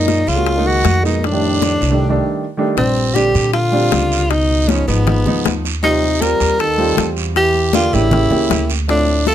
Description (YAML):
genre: Afro-Cuban jazz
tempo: 157 BPM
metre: 4/4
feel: straight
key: unclear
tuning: A4 = 440 Hz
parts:
  - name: mellow tenor saxophone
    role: melody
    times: 0.0-9.3 s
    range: Cb4 to Bb4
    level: -17 LUFS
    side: equal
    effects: none
  - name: breathy trombone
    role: second line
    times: 0.0-9.3 s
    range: G2 to G3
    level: -25 LUFS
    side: left 7 dB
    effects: none
  - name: dark upright piano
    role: accompaniment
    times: 0.0-9.3 s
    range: Eb3 to G4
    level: -20 LUFS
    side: right 2 dB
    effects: none
  - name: upright bass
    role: bass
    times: 0.0-9.3 s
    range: Ab1 to Bb2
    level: -19 LUFS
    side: equal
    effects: none
  - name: bongos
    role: percussion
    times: 0.1-9.3 s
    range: none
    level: -23 LUFS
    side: left 12 dB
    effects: none
  - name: congas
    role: percussion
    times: 0.1-9.3 s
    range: none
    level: -22 LUFS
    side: left 4 dB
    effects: none
  - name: guiro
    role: percussion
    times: 0.1-9.3 s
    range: none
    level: -27 LUFS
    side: right 8 dB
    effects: none
room: little or no reverb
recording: close, detailed microphones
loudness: -13 LUFS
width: side -11 dB against mid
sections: 0.0-2.8 A section; 2.8-9.3 B section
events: none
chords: 0.0 F#69; 1.2 F13; 2.8 Bb69; 4.3 Db9; 5.8 Eb6; 7.4 Em7b5; 8.1 A7b9